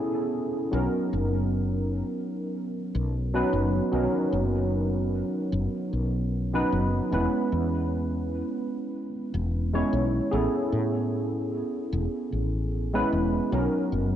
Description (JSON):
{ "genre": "vaporwave", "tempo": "75 BPM", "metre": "4/4", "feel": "swing 54% on 16ths", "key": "B major", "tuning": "A4 = 440 Hz", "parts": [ { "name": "tine electric piano", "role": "accompaniment", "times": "0.0-14.2 s", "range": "F#3 to C#5", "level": "-26 LUFS", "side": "right 1 dB", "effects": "overdrive, analog chorus, tape echo" }, { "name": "woody fretless electric bass", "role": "bass", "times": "0.7-14.2 s", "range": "E1 to A2", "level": "-28 LUFS", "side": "left 1 dB", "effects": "wide subtle chorus" } ], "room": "moderate concert hall reverb, RT60 2.6 s", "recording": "dark, warm production, cassette tape", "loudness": "-25 LUFS", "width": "side -10 dB against mid", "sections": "0.7-14.2 A section", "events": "break 0.0-0.7", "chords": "0.0 Amaj9; 0.7 Bmaj9; 7.1 E6; 10.3 Amaj9; 13.5 Bmaj9" }